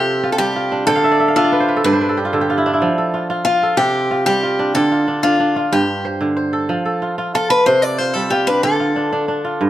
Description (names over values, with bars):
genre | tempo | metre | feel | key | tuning
west african traditional | 124 BPM (dotted quarters) | 12/8 | straight | unclear | A4 = 441 Hz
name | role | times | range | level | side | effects
picked acoustic archtop guitar | melody | 0.0-9.7 s | D4 to D5 | -16 LUFS | left 1 dB | plate reverb
kora | arpeggios | 0.0-9.7 s | G2 to G5 | -17 LUFS | right 2 dB | none
room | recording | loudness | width
moderate studio ambience, RT60 0.5 s | none | -14 LUFS | side -13 dB against mid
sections
0.0-9.7 A section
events
kora fill 0.9-2.8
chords
0.0 C5; 0.9 Dm; 1.8 G5; 2.8 F; 3.8 C5; 4.8 Dm; 5.7 G5; 6.7 F; 7.7 C5; 8.6 Dm